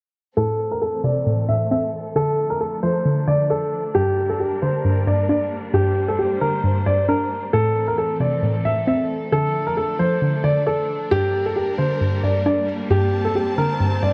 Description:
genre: hip hop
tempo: 134 BPM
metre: 4/4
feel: half-time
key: unclear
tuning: A4 = 438 Hz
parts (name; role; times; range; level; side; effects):
- dark baby grand piano; melody; 0.4-14.1 s; G4 to E5; -24 LUFS; equal; low-pass filter
- soft round pluck; accompaniment; 0.4-14.1 s; G2 to D5; -24 LUFS; equal; chorus, low-pass filter
- dark symphonic string section; sustained chords; 0.4-14.1 s; E3 to A5; -31 LUFS; equal; low-pass filter
- swell; sound effects; 13.3-14.1 s; none; -34 LUFS; equal; none
room: light reverb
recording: worn, warbling old tape, cassette tape, warbly pitch drift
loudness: -21 LUFS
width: mono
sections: 0.4-14.1 A section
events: filter sweep 0.4-14.1; swell 13.3-14.1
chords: 0.4 Am; 2.2 Dm; 4.0 Gm; 7.5 Am; 9.3 Dm; 11.1 Gm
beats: | 0.37 0.82 1.26 1.71 | 2.16 2.61 3.06 3.50 | 3.95 4.40 4.85 5.29 | 5.74 6.19 6.64 7.08 | 7.53 7.98 8.43 8.88 | 9.32 9.77 10.22 10.67 | 11.11 11.56 12.01 12.46 | 12.90 13.35 13.80

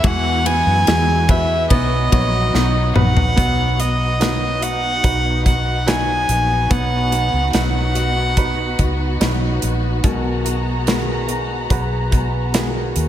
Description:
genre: pop ballad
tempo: 72 BPM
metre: 4/4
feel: straight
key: B major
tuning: A4 = 438 Hz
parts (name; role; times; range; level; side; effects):
- warm violin; melody; 0.0-9.2 s; D#5 to G#5; -20 LUFS; equal; slapback echo, digital delay
- clear baby grand piano; accompaniment; 0.0-13.1 s; B2 to B4; -25 LUFS; right 3 dB; slapback echo
- rich studio string section; sustained chords; 0.0-13.1 s; G#3 to A#5; -27 LUFS; left 1 dB; none
- flamenco guitar; arpeggios; 0.0-13.1 s; E2 to F#4; -27 LUFS; left 5 dB; slapback echo, digital delay
- vintage muted fingered electric bass; bass; 0.0-13.1 s; A#1 to F#2; -20 LUFS; equal; none
- modern studio drum kit; drums; 0.0-13.1 s; hi-hat, kick drum, ride cymbal, snare drum, toms; -20 LUFS; equal; none
room: moderate concert hall reverb, RT60 2.4 s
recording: big arena sound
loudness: -15 LUFS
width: side -11 dB against mid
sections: 0.0-3.4 A section; 3.4-13.1 B section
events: drum fill 2.5-3.4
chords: 0.0 Eadd9; 1.7 B; 10.0 G#m7/B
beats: | 0.04 0.87 1.71 2.54 | 3.37 4.21 5.04 5.87 | 6.71 7.54 8.37 9.21 | 10.04 10.87 11.71 12.54

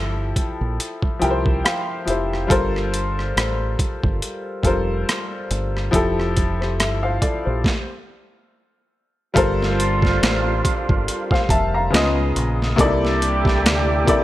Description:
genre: R&B, neo-soul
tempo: 70 BPM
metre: 4/4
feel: swing 57% on 16ths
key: G dorian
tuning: A4 = 440 Hz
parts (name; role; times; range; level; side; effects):
- clear upright piano; accompaniment; 0.0-14.2 s; C3 to Bb5; -21 LUFS; left 2 dB; none
- deep dub fingered electric bass; bass; 0.0-14.0 s; F1 to D2; -23 LUFS; equal; none
- boom bap sampler-style drum kit; drums; 0.4-14.2 s; hi-hat, kick drum, rim click, snare drum; -21 LUFS; equal; overdrive
- mellow horn section; stabs; 9.4-14.2 s; C4 to G#4; -26 LUFS; right 6 dB; tape echo
room: digital ambience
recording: none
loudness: -18 LUFS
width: side -15 dB against mid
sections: 0.0-9.4 A section; 9.4-14.2 B section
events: upright piano fill 0.8-2.5; stop 7.6-9.4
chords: 0.0 Fmaj9; 2.5 Gm11; 5.9 Fmaj9; 11.9 C#9; 12.8 C13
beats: 0.79 1.65 | 2.50 3.36 4.22 5.07 | 5.93 6.79 7.64 8.50 | 9.36 10.22 11.07 11.93 | 12.79 13.64

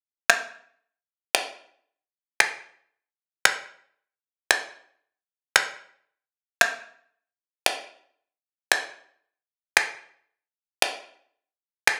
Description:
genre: pop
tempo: 114 BPM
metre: 4/4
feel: straight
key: none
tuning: none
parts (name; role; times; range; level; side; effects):
- electronic finger snaps; drums; 0.3-12.0 s; none; -21 LUFS; equal; overdrive
room: wet studio reverb, RT60 0.6 s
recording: rough home demo mix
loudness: -25 LUFS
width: mono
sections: 0.0-12.0 A section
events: none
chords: none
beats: 0.30 0.82 1.35 | 1.88 2.40 2.93 3.45 | 3.98 4.51 5.03 5.56 | 6.09 6.61 7.14 7.67 | 8.19 8.72 9.24 9.77 | 10.30 10.82 11.35 11.88

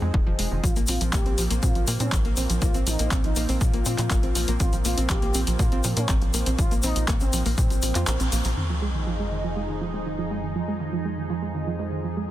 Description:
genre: melodic techno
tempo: 121 BPM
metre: 4/4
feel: straight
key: F minor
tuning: A4 = 440 Hz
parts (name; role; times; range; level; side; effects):
- lush unison pad; sustained chords; 0.0-12.3 s; F2 to Ab4; -33 LUFS; right 1 dB; chorus, phaser, sidechain pumping
- soft round pluck; arpeggios; 0.0-12.2 s; Eb3 to Bb4; -30 LUFS; right 2 dB; chorus, sidechain pumping, digital delay
- tight sequencer bass; bass; 0.0-8.5 s; Eb1 to Bb2; -26 LUFS; equal; sidechain pumping
- electronic kick drum; drums; 0.1-7.7 s; none; -24 LUFS; equal; none
- punchy analog drum machine; drums; 0.4-11.9 s; crash cymbal, handclaps, hi-hat; -31 LUFS; left 1 dB; sidechain pumping on hats, low-pass filter on hats, low-pass filter on snare, sidechain pumping on cymbals, low-pass filter on cymbals
- expressive portamento lead; melody; 0.6-8.5 s; C4 to G4; -33 LUFS; equal; wide subtle chorus, sidechain pumping, tape echo
- tube shaker; percussion; 0.6-8.5 s; none; -35 LUFS; left 4 dB; none
- sub drop; sound effects; 8.6-10.6 s; none; -30 LUFS; equal; none
room: light reverb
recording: dense, heavily limited modern master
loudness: -22 LUFS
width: side -14 dB against mid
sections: 0.0-8.6 A section; 8.6-12.3 B section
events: kick drops out 8.1-8.6; band accent 8.1; impact 8.6-10.6; filter sweep on synth arpeggio sound 8.6-12.3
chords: 0.0 Fm7; 0.6 Bbsus2; 8.6 Fm7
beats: 0.14 | 0.64 1.13 1.63 2.12 | 2.62 3.12 3.61 4.11 | 4.60 5.10 5.59 6.09 | 6.59 7.08 7.58 8.07 | 8.57 9.07 9.56 10.06 | 10.55 11.05 11.54 12.04

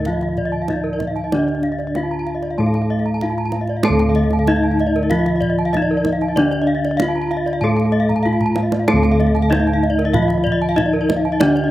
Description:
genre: Balinese gamelan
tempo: 95 BPM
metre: 4/4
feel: straight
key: D pelog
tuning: A4 = 440 Hz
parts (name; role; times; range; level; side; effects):
- gamelan-type bronze metallophone; melody; 0.0-11.7 s; D4 to A4-30c; -21 LUFS; left 3 dB; slapback echo
- gamelan-type bronze metallophone; accompaniment; 0.0-11.7 s; D3 to A3-30c; -21 LUFS; right 2 dB; none
- gamelan-type bronze metallophone; arpeggios; 0.0-11.6 s; D5 to A5-30c; -24 LUFS; left 3 dB; slapback echo
- gamelan-type bossed gongs; bass; 0.0-11.7 s; D2 to A4-30c; -22 LUFS; equal; none
- gamelan-type bronze metallophone; arpeggios; 0.1-11.7 s; Bb4-20c to Bb5-20c; -26 LUFS; right 5 dB; slapback echo
- kendang; percussion; 0.1-11.6 s; none; -25 LUFS; right 3 dB; none
room: little or no reverb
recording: recorded outdoors, with no room sound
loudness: -15 LUFS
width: side -15 dB against mid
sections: 0.0-8.9 A section; 8.9-11.7 A section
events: drum fill 8.1-8.9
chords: none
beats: 0.06 0.69 | 1.32 1.95 2.58 3.21 | 3.84 4.47 5.10 5.73 | 6.36 6.99 7.62 8.26 | 8.88 9.52 10.14 10.78 | 11.41

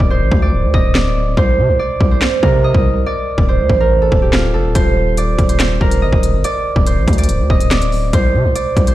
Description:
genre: hip hop, drill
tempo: 142 BPM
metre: 4/4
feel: half-time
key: D phrygian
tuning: A4 = 439 Hz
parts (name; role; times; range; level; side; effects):
- Celtic harp; melody; 0.0-8.9 s; F4 to Eb5; -17 LUFS; right 3 dB; ping-pong delay
- distorted 808-style bass; bass; 0.0-8.9 s; C1 to C3; -15 LUFS; equal; distortion
- drill drum kit; drums; 0.0-8.9 s; handclaps, hi-hat, kick drum, snare drum; -15 LUFS; equal; none
room: digital ambience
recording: played on a big sound system in a bare room, large studio reverb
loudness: -12 LUFS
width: side -15 dB against mid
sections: 0.0-8.9 A section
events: break 0.0-4.8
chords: 0.0 D5; 1.4 Cm; 3.1 Dm; 4.8 Eb6; 6.4 D5; 8.1 N.C.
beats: 0.10 0.53 0.95 | 1.37 1.79 2.22 2.64 | 3.06 3.48 3.91 4.33 | 4.75 5.17 5.60 6.02 | 6.44 6.87 7.29 7.71 | 8.13 8.55

